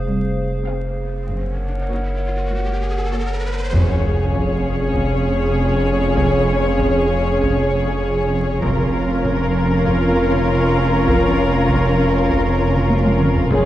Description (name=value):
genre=cinematic, suspense film score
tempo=98 BPM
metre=4/4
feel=straight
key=unclear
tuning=A4 = 440 Hz
part: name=warbly tape-like pad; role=sustained chords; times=0.0-13.7 s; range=Ab4 to Gb5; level=-27 LUFS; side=right 1 dB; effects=chorus, built-in reverb
part: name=soft dub sub bass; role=drone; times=0.0-13.7 s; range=F1 to Gb1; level=-23 LUFS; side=equal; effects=none
part: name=riser and sub drop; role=sound effects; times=1.7-6.2 s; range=none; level=-27 LUFS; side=equal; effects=none
part: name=muted studio cello section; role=bass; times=0.1-13.7 s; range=C2 to Gb2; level=-24 LUFS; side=right 2 dB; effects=none
part: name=muted studio double bass section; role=bass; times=0.1-13.7 s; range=F1 to Db2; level=-23 LUFS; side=right 1 dB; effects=none
part: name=muted studio violin section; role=melody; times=0.7-13.7 s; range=Ab4 to F5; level=-24 LUFS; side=left 3 dB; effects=none
part: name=muted symphonic violin section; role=second line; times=0.7-13.7 s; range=F4 to Ab4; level=-25 LUFS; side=left 1 dB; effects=none
part: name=muted studio viola section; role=accompaniment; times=0.7-13.7 s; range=Bb3 to Db4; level=-25 LUFS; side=right 1 dB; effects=none
part: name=mellow French horn section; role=sustained chords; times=3.7-13.7 s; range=Db4 to Bb4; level=-25 LUFS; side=left 2 dB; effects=none
part: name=taiko ensemble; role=drums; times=3.7-13.7 s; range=none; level=-25 LUFS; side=equal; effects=none
part: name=timpani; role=percussion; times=3.7-4.6 s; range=F2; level=-23 LUFS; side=equal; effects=none
part: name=muted studio violin section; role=texture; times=8.6-13.7 s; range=Bb5 to G6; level=-32 LUFS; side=left 4 dB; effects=none
room=moderate concert hall reverb, RT60 2.1 s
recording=vinyl crackle, nothing above 10.6 kHz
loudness=-16 LUFS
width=side -13 dB against mid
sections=0.0-3.7 A section; 3.7-13.7 B section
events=riser 1.7-3.7; impact 3.7-6.2; drum fill 12.9-13.5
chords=0.0 Fm; 1.3 Gb; 3.7 Db/F; 8.6 Bbm/F